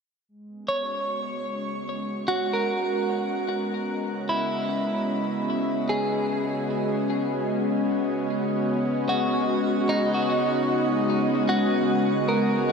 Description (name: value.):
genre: ambient.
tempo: 75 BPM.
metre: 3/4.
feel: straight.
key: C# dorian.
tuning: A4 = 440 Hz.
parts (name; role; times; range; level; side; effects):
warbly tape-like pad; sustained chords; 0.3-12.7 s; C#3 to D#5; -25 LUFS; left 1 dB; chorus, built-in reverb.
bowed-like drone; drone; 1.6-12.7 s; C#3 to C#4; -38 LUFS; left 1 dB; built-in reverb, phaser.
twelve-string electric guitar; arpeggios; 0.7-12.7 s; D#4 to C#5; -27 LUFS; right 1 dB; ping-pong delay.
room: wet shimmer reverb, RT60 8.1 s.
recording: dark, warm production, nothing above 10.5 kHz.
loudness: -23 LUFS.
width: side -5 dB against mid.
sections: 0.3-12.7 A section.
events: fade-in on synth drone 0.3-12.7.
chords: 0.3 C#m7; 9.9 G#m7/C#.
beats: | 0.29 1.09 1.89 | 2.69 3.49 4.29 | 5.09 5.89 6.69 | 7.49 8.29 9.09 | 9.89 10.69 11.49 | 12.29.